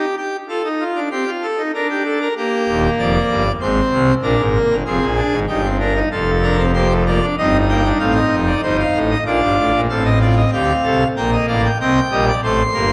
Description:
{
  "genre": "classical, baroque-style 4-part fugue for pipe organ",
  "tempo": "96 BPM",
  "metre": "3/4",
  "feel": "straight",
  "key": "unclear",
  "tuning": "A4 = 439 Hz",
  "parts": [
    { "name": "pipe organ, full organ", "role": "solo", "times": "0.0-12.9 s", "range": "Eb1 to C6", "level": "-17 LUFS", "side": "equal", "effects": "none" }
  ],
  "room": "wet concert hall reverb, RT60 2.1 s",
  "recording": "none",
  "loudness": "-17 LUFS",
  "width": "mono",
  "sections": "0.0-9.9 A section; 9.9-12.9 B section",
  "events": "none",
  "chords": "0.5 F7; 1.7 Bb/D; 2.4 Eb; 3.6 Ab; 4.2 Bb7; 5.5 Eb/G; 6.1 Bb/F; 7.4 Cm7/G; 8.0 F7; 9.3 Bb; 9.9 Dm/A; 11.2 Gm/Bb; 11.8 Cm",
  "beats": "| 0.48 1.11 1.74 | 2.36 2.98 3.60 | 4.22 4.85 5.48 | 6.11 6.74 7.37 | 8.00 8.63 9.27 | 9.90 10.53 11.16 | 11.79 12.42"
}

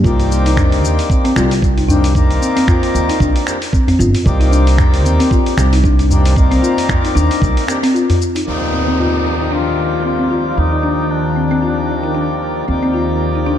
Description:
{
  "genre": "organic downtempo",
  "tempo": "114 BPM",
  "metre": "4/4",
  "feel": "swing 57% on 16ths",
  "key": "unclear",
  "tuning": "A4 = 440 Hz",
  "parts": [
    { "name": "pedal harmonium", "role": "accompaniment", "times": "0.0-13.6 s", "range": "Eb3 to D5", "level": "-20 LUFS", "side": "left 2 dB", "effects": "sidechain pumping, ping-pong delay" },
    { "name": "folk marimba with soft mallets", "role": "arpeggios", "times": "0.0-13.6 s", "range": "C4 to F4", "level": "-18 LUFS", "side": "left 2 dB", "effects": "low-pass filter, ping-pong delay" },
    { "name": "upright bass", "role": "bass", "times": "0.0-13.6 s", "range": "G1 to Eb2", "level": "-16 LUFS", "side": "right 1 dB", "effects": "sidechain pumping" },
    { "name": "electronic kick drum", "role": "drums", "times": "0.0-7.5 s", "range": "none", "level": "-15 LUFS", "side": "right 1 dB", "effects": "none" },
    { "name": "dusty soul sampler-style drum kit", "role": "drums", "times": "0.1-8.5 s", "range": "finger snaps, hi-hat, shaker", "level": "-24 LUFS", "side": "equal", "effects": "low-pass filter on perc, low-pass filter on snare, low-pass filter on hats, low-pass filter on room" },
    { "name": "djembe", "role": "percussion", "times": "0.6-8.4 s", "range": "none", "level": "-20 LUFS", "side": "left 1 dB", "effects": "none" },
    { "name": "warm duduk", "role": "melody", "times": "8.5-12.4 s", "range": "D4 to F4", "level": "-22 LUFS", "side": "left 2 dB", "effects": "tape echo" },
    { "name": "ethereal airy pad", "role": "sustained chords", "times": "9.7-13.6 s", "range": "Eb3 to Bb5", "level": "-23 LUFS", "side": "equal", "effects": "ensemble chorus, built-in reverb, sidechain pumping" },
    { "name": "downlifter", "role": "sound effects", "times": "8.5-12.7 s", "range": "none", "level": "-25 LUFS", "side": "equal", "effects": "none" }
  ],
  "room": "light reverb, small room ambience",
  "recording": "dark, warm production",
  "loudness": "-12 LUFS",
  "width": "side -10 dB against mid",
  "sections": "0.0-8.5 A section; 8.5-13.6 B section",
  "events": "filter sweep on ambient pad 8.5-13.6",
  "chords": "0.0 Cm7; 8.5 Ebmaj7",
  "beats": "| 0.05 0.57 1.10 1.63 | 2.15 2.68 3.21 3.73 | 4.26 4.78 5.31 5.84 | 6.36 6.89 7.42 7.94 | 8.47 8.99 9.52 10.05 | 10.57 11.10 11.63 12.15 | 12.68 13.21"
}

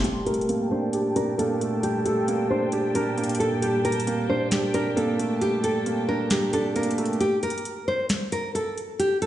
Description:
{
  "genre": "hip hop, trap",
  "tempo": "134 BPM",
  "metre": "4/4",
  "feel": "half-time",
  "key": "G minor",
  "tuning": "A4 = 440 Hz",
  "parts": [
    { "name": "nylon-string guitar", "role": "melody", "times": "0.0-9.3 s", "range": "G4 to C5", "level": "-26 LUFS", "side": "equal", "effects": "low-pass filter, digital delay" },
    { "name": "felt-muted upright piano", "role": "accompaniment", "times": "0.0-7.2 s", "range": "G3 to G4", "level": "-25 LUFS", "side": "right 2 dB", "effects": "low-pass filter" },
    { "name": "warm chamber string section", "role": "sustained chords", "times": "0.0-7.2 s", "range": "Bb2 to A5", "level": "-32 LUFS", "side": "left 1 dB", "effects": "low-pass filter" },
    { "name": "booming analog drum machine", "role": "drums", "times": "0.0-9.3 s", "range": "hi-hat, snare drum", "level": "-30 LUFS", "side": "left 1 dB", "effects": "none" }
  ],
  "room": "moderate recital hall reverb, RT60 1.5 s, small room ambience",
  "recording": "played on a big sound system in a bare room, large studio reverb, nothing above 10.9 kHz",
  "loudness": "-22 LUFS",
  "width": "side -12 dB against mid",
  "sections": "0.0-7.2 A section; 7.2-9.3 B section",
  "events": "filter sweep 0.0-7.2; kick muted 6.3-7.2, 7.2-9.3",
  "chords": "0.0 Gmadd9; 7.2 N.C.",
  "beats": "| 0.04 0.49 0.94 1.38 | 1.83 2.28 2.73 3.17 | 3.62 4.07 4.52 4.97 | 5.41 5.86 6.31 6.76 | 7.21 7.65 8.10 8.55 | 9.00"
}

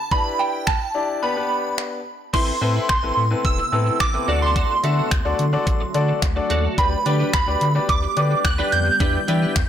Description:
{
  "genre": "dance-pop",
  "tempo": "108 BPM",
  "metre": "4/4",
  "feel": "straight",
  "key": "A dorian",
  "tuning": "A4 = 440 Hz",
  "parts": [
    { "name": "shimmering bell with halo", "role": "melody", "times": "0.0-9.7 s", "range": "G5 to G6", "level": "-22 LUFS", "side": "right 3 dB", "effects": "ensemble chorus, phaser, ping-pong delay" },
    { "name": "bright grand piano", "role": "accompaniment", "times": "0.1-9.5 s", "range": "B3 to E5", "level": "-25 LUFS", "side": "left 4 dB", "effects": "sidechain pumping" },
    { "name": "pop drum kit", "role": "drums", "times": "0.1-9.7 s", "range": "crash cymbal, finger snaps, hi-hat, kick drum", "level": "-23 LUFS", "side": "equal", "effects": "soft clipping on snare" },
    { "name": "shimmering ambient pad", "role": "sustained chords", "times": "3.3-9.7 s", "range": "C3 to G4", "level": "-31 LUFS", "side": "equal", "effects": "chorus, built-in reverb, sidechain pumping" },
    { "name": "twelve-string electric guitar", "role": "riff", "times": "2.3-9.6 s", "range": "C4 to D5", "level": "-28 LUFS", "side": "right 4 dB", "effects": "ensemble chorus" },
    { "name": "warm sub bass", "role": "bass", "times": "2.3-9.7 s", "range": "E1 to E3", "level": "-22 LUFS", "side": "equal", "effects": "sidechain pumping" }
  ],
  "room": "light reverb",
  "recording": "blown-out, overdriven recording, overdrive",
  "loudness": "-18 LUFS",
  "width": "side -9 dB against mid",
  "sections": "0.0-2.3 A section; 2.3-9.7 B section",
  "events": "break 1.2-2.3",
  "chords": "0.1 Em7; 1.2 G; 2.3 Amadd9; 4.3 D; 6.8 G/D; 9.0 Em7",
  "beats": "| 0.11 0.67 1.23 1.78 | 2.34 2.89 3.45 4.00 | 4.56 5.11 5.67 6.22 | 6.78 7.34 7.89 8.45 | 9.00 9.56"
}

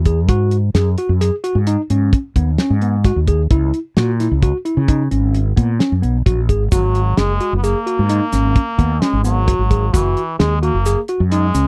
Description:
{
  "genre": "progressive instrumental, band music in an uneven meter",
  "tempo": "131 BPM",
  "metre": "7/4",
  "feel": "straight",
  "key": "G# minor",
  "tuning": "A4 = 435 Hz",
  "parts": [
    { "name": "fretless electric bass", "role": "bass", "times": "0.0-11.7 s", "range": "F#1 to C#3", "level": "-18 LUFS", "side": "equal", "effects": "none" },
    { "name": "tine electric piano", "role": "arpeggios", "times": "0.1-11.7 s", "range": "B3 to G#4", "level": "-23 LUFS", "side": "equal", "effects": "none" },
    { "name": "cloth-damped thuddy drum kit", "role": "drums", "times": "0.1-11.7 s", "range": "hi-hat, kick drum, snare drum", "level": "-19 LUFS", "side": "equal", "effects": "none" },
    { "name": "trombone with metal mute", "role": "second line", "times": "6.7-11.7 s", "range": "E3 to B3", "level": "-24 LUFS", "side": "equal", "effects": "none" },
    { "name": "tube shaker", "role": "percussion", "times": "6.7-11.7 s", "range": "none", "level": "-35 LUFS", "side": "equal", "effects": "none" }
  ],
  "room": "little or no reverb",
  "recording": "dry, close 1970s-style studio recording",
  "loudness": "-16 LUFS",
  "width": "mono",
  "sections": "0.0-11.7 A section",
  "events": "none",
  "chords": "0.3 G#7(no3); 3.5 C#m7; 6.7 G#7(no3); 9.9 F#7",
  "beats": "| 0.29 0.75 1.21 1.67 2.13 2.59 3.05 | 3.51 3.97 4.42 4.88 5.34 5.80 6.26 | 6.72 7.18 7.64 8.10 8.56 9.02 9.48 | 9.94 10.40 10.86 11.32"
}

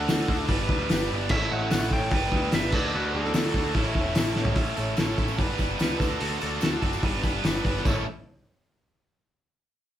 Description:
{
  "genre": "classic rock",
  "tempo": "147 BPM",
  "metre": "4/4",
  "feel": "straight",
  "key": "A mixolydian",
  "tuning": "A4 = 440 Hz",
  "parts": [
    { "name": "lightly driven lead guitar", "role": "melody", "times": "0.0-3.7 s", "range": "A4 to G5", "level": "-32 LUFS", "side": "right 1 dB", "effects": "none" },
    { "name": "picked old ladder-braced acoustic guitar", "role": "accompaniment", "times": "0.0-8.0 s", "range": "A2 to B4", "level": "-36 LUFS", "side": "equal", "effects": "none" },
    { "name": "overdriven electric guitar", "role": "riff", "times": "0.0-8.0 s", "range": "A2 to B4", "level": "-33 LUFS", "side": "left 6 dB", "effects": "none" },
    { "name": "tight distorted guitar", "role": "riff", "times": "0.0-8.0 s", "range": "A2 to B4", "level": "-31 LUFS", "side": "right 7 dB", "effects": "distortion" },
    { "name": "growling picked electric bass", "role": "bass", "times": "0.0-8.0 s", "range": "E1 to D2", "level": "-32 LUFS", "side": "equal", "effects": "overdrive" },
    { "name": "cloth-damped thuddy drum kit", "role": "drums", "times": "0.1-8.0 s", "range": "crash cymbal, hi-hat, kick drum, snare drum, toms", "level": "-26 LUFS", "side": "equal", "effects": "none" },
    { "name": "tambourine", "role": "percussion", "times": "0.1-8.0 s", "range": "none", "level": "-44 LUFS", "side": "left 5 dB", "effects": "none" }
  ],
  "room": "moderate studio reverb, RT60 0.5 s",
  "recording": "band playing live in one room",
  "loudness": "-23 LUFS",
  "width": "side -11 dB against mid",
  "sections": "0.0-4.6 A section; 4.6-7.9 B section; 7.9-9.5 C section",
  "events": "drum fill 4.4",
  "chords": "0.5 G; 1.3 A; 2.1 G; 2.7 D; 3.8 A; 5.4 G; 6.0 D; 7.0 G; 7.9 A",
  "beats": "0.09 0.50 0.91 | 1.31 1.72 2.13 2.53 | 2.94 3.35 3.75 4.16 | 4.57 4.98 5.39 5.80 | 6.21 6.62 7.03 7.44 | 7.86"
}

